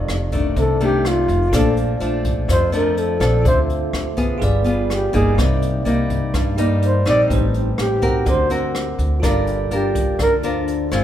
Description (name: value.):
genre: bossa nova.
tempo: 125 BPM.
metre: 4/4.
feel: straight.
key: G minor.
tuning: A4 = 440 Hz.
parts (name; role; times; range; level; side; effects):
bell-like tine electric piano; accompaniment; 0.0-11.0 s; Eb4 to E5; -26 LUFS; right 4 dB; medium stereo tremolo.
nylon-string guitar; accompaniment; 0.0-11.0 s; F2 to Bb4; -22 LUFS; left 3 dB; none.
upright bass; bass; 0.0-11.0 s; F1 to G2; -21 LUFS; equal; none.
jazz brush drum kit; drums; 0.1-11.0 s; hi-hat, kick drum, rim click; -24 LUFS; equal; none.
breathy flugelhorn; melody; 0.6-10.4 s; F4 to D5; -20 LUFS; equal; none.
room: light reverb.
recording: band playing live in one room.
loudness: -16 LUFS.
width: side -11 dB against mid.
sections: 0.0-11.0 A section.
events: flugelhorn solo 0.0-11.0.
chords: 0.0 F13; 1.5 Bbmaj7; 3.5 Dm7; 4.4 G7b9; 5.4 Cm7; 7.3 Am7b5; 8.3 Daug7; 9.2 Gm7.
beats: 0.08 0.56 1.04 | 1.53 2.01 2.49 2.97 | 3.45 3.93 4.42 4.90 | 5.38 5.86 6.34 6.82 | 7.30 7.78 8.27 8.75 | 9.23 9.71 10.19 10.67.